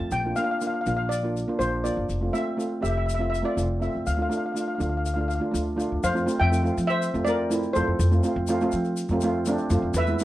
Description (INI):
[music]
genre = calypso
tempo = 122 BPM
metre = 4/4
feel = straight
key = F major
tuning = A4 = 440 Hz
[part]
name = steel pan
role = melody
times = 0.0-10.2 s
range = A4 to A5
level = -28 LUFS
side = left 1 dB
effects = none
[part]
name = steel pan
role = accompaniment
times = 0.0-10.2 s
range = G#3 to G4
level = -26 LUFS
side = right 1 dB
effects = none
[part]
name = upright bass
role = bass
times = 0.0-10.1 s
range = F1 to F3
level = -27 LUFS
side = equal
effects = none
[part]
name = tube shaker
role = percussion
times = 0.1-10.2 s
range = none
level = -41 LUFS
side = left 6 dB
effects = none
[sound]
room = light reverb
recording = worn, warbling old tape, cassette tape, warbly pitch drift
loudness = -23 LUFS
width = side -15 dB against mid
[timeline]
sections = 0.0-6.0 A section; 6.0-10.2 B section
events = none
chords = 0.1 Bb; 2.1 Fmaj7; 4.1 Dm; 6.0 F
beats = | 0.12 0.61 1.11 1.60 | 2.09 2.58 3.08 3.57 | 4.06 4.55 5.05 5.54 | 6.03 6.52 7.01 7.50 | 7.99 8.48 8.97 9.46 | 9.95